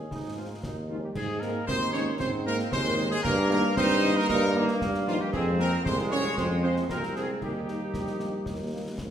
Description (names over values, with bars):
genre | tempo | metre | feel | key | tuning
military-style march for wind band | 115 BPM | 2/4 | straight | Ab major | A4 = 441 Hz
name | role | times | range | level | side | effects
warm trumpet section | melody | 0.0-8.9 s | F4 to Db5 | -32 LUFS | left 1 dB | none
warm tuba | bass | 0.0-9.1 s | Bb1 to Ab2 | -29 LUFS | equal | none
bright trombone section | sustained chords | 0.1-9.1 s | Ab3 to F4 | -33 LUFS | right 2 dB | none
concert snare drum, concert bass drum and clash cymbals | drums | 0.1-9.1 s | none | -37 LUFS | left 1 dB | none
mellow French horn section | accompaniment | 0.4-8.8 s | Eb3 to Eb4 | -38 LUFS | left 4 dB | none
dark euphonium | second line | 0.9-9.0 s | F3 to Db4 | -31 LUFS | right 2 dB | none
room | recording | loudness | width
wet recital hall reverb, RT60 1.6 s | recorded in a church or concert hall | -25 LUFS | side -9 dB against mid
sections
0.0-1.2 A section; 1.2-9.1 A section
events
none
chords
0.0 Ab; 3.2 Eb/G; 5.3 Fm; 7.4 Eb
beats
| 0.11 0.64 | 1.16 1.68 | 2.20 2.72 | 3.25 3.77 | 4.29 4.81 | 5.33 5.85 | 6.38 6.90 | 7.42 7.94 | 8.46 8.98